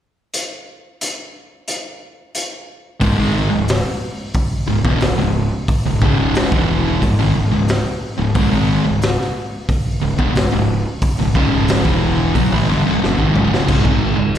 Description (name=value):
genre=stoner and doom metal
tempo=90 BPM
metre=4/4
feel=straight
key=C# minor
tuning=A4 = 440 Hz
part: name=raw garage drum kit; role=drums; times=0.3-14.4 s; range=crash cymbal, hi-hat, kick drum, snare drum, toms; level=-19 LUFS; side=equal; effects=none
part: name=fuzz guitar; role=riff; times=3.0-14.4 s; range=C#2 to G#3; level=-17 LUFS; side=equal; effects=distortion, slapback echo
part: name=fuzz fingered electric bass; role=bass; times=3.0-14.4 s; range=C#1 to B1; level=-21 LUFS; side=equal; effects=overdrive
room=little or no reverb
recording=live gig heard through the venue's PA, recital hall reverb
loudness=-15 LUFS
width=side -10 dB against mid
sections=0.3-3.0 A section; 3.0-14.4 B section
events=drum fill 13.0-13.7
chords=0.3 N.C.; 3.0 C#m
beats=| 0.34 1.01 1.68 2.35 | 3.01 3.68 4.35 5.02 | 5.68 6.35 7.02 7.68 | 8.35 9.02 9.68 10.35 | 11.02 11.68 12.35 13.01 | 13.68 14.34